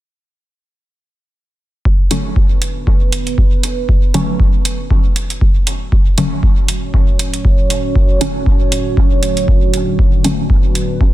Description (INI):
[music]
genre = dub techno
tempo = 118 BPM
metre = 4/4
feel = swing 56% on 16ths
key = B minor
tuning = A4 = 440 Hz
[part]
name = dark analog pad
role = sustained chords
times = 2.6-11.1 s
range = A3 to C#5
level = -21 LUFS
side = right 2 dB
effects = chorus, phaser, vintage 12-bit sampler grit, sidechain pumping
[part]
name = electronic kick drum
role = drums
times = 1.9-11.1 s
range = none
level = -13 LUFS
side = equal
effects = none
[part]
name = filtered dub chord stab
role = stabs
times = 2.1-10.4 s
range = D3 to C#4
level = -21 LUFS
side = equal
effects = phaser, sidechain pumping, dub echo
[part]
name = electronic hi-hat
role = drums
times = 2.1-10.9 s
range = none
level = -22 LUFS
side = right 3 dB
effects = none
[sound]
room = light reverb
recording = dense, heavily limited modern master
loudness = -12 LUFS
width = side -15 dB against mid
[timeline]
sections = 1.9-11.1 A section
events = filter sweep on synth stab 1.9-11.1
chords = 1.9 Bm7